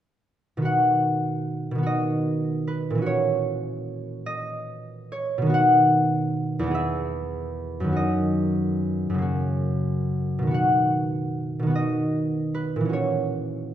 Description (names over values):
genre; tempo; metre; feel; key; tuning
classical, solo harp piece; 45-53 BPM (dotted quarters); 6/8; rubato; B major; A4 = 440 Hz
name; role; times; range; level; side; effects
concert harp; solo; 0.6-13.7 s; E2 to F#5; -22 LUFS; equal; none
room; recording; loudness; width
wet recital hall reverb, RT60 1.5 s; none; -22 LUFS; side -11 dB against mid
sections
0.7-13.7 A section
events
none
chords
0.7 B; 8.0 B/F#; 10.5 B; 12.9 F#7/A#